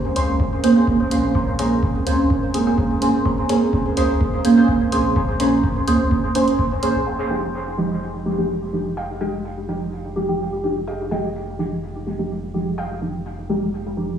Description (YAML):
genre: dub techno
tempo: 126 BPM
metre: 4/4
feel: straight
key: F minor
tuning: A4 = 440 Hz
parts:
  - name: dark analog pad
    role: sustained chords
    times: 0.0-14.2 s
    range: Ab3 to Bb4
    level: -27 LUFS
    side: right 2 dB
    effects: chorus, sidechain pumping
  - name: deep mellow chord stab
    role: stabs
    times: 0.2-14.2 s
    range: F3 to C5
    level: -20 LUFS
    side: right 2 dB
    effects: chorus, phaser, vintage 12-bit sampler grit, sidechain pumping, dub echo
  - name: pure sine sub bass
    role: bass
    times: 0.2-14.2 s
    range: F1 to Db2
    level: -28 LUFS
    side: equal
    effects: sidechain pumping
  - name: electronic hi-hat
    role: drums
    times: 0.2-6.9 s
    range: none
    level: -31 LUFS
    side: left 1 dB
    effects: studio reverb
  - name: electronic kick drum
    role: drums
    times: 0.4-6.7 s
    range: none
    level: -23 LUFS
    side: equal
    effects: studio reverb
  - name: warbly dusty pluck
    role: riff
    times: 1.4-12.8 s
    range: Ab4 to C6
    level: -34 LUFS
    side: equal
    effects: chorus, phaser, sidechain pumping, dub echo
room: moderate digital room reverb, RT60 1.1 s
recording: played on a big sound system in a bare room, large studio reverb, small room ambience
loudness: -18 LUFS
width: side -9 dB against mid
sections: 0.0-7.1 A section; 7.1-14.2 B section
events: filter sweep on synth stab 7.1-14.2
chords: 0.0 Bbm9; 7.1 Fm9